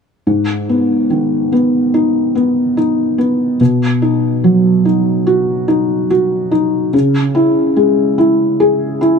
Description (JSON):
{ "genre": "pop", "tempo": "72 BPM", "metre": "4/4", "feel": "straight", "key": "G# minor", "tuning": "A4 = 440 Hz", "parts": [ { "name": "felt-muted upright piano", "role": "accompaniment", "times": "0.3-9.2 s", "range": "G#2 to G#4", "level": "-11 LUFS", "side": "equal", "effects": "none" } ], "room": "light reverb", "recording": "none", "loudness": "-11 LUFS", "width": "side -6 dB against mid", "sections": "0.3-9.2 A section", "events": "none", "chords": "0.3 G#m; 3.6 B; 6.9 C#m" }